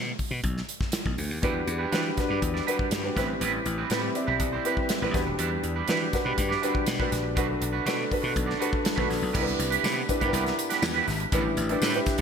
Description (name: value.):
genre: polished 1980s jazz-funk pop.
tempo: 121 BPM.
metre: 4/4.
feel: straight.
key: E minor.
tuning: A4 = 440 Hz.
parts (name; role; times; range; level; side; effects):
slap bass; bass; 0.0-12.2 s; D#1 to E3; -30 LUFS; left 1 dB; none.
modern studio drum kit; drums; 0.2-12.2 s; crash cymbal, hi-hat, kick drum, snare drum; -30 LUFS; equal; gated reverb.
warm concert grand piano; accompaniment; 1.4-12.2 s; C4 to B5; -29 LUFS; left 1 dB; analog chorus.
electric guitar at the edge of break-up; riff; 1.4-12.2 s; G3 to D5; -30 LUFS; right 7 dB; lush chorus.
tambourine; percussion; 9.3-12.2 s; none; -40 LUFS; left 10 dB; none.
room: moderate lush hall reverb, RT60 2.6 s.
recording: bright 1980s-style digital production.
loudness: -24 LUFS.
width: side -7 dB against mid.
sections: 0.0-9.3 A section; 9.3-12.2 B section.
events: grand piano fill 4.6-5.4.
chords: 0.0 N.C.; 1.4 Em7; 3.2 Am9; 5.1 Em7; 7.4 Bm7; 9.3 Cmaj7; 11.3 A7sus4.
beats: 0.44 0.94 | 1.43 1.93 2.42 2.92 | 3.41 3.91 4.40 4.90 | 5.39 5.89 6.38 6.88 | 7.37 7.87 8.36 8.85 | 9.35 9.84 10.34 10.83 | 11.33 11.82.